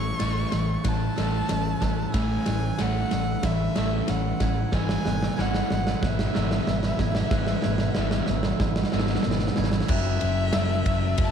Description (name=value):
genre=post-rock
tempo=93 BPM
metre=4/4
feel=straight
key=E major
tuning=A4 = 438 Hz
part: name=rich violin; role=melody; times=0.0-11.3 s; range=E5 to C#6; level=-32 LUFS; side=left 1 dB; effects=tape echo
part: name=dark chamber string section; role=sustained chords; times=0.0-11.3 s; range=F#3 to F#5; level=-43 LUFS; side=left 1 dB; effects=none
part: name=glockenspiel with hard plastic mallets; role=arpeggios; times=0.0-11.3 s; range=E6 to A6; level=-40 LUFS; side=right 7 dB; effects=tape echo
part: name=semi-hollow electric guitar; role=arpeggios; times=0.0-9.9 s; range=G#2 to E4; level=-38 LUFS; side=left 3 dB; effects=none
part: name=overdriven semi-hollow guitar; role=riff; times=0.0-11.3 s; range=E2 to A3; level=-31 LUFS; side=left 12 dB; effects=none
part: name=sludgy distorted guitar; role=riff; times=0.0-9.9 s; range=G#2 to A3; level=-31 LUFS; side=right 11 dB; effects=overdrive
part: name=picked electric bass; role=bass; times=0.0-11.3 s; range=F#1 to A1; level=-28 LUFS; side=equal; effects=none
part: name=big rock drum kit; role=drums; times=0.2-11.3 s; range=crash cymbal, kick drum, ride cymbal, snare drum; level=-27 LUFS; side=right 1 dB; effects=none
room=light reverb, small room ambience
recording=dark, warm production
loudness=-22 LUFS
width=side -8 dB against mid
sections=0.0-9.9 A section; 9.9-11.3 B section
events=build-up 0.0-9.9; drum fill 0.0-9.9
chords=0.0 A; 4.7 Eadd9/G#; 9.9 F#m7